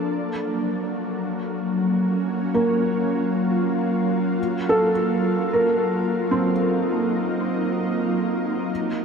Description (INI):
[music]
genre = ambient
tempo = free time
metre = none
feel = none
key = unclear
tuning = A4 = 440 Hz
[part]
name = ethereal airy pad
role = sustained chords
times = 0.0-9.0 s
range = Gb3 to A4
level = -22 LUFS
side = equal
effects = ensemble chorus, built-in reverb
[part]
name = felt-muted upright piano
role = arpeggios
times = 2.5-9.0 s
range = Bb3 to Bb4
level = -23 LUFS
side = right 1 dB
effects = tape echo
[sound]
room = wet huge ambient reverb, RT60 7.5 s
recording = none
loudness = -20 LUFS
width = side -6 dB against mid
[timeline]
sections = 0.0-9.0 A section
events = none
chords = 0.1 Gbmaj7; 4.4 Ebmadd9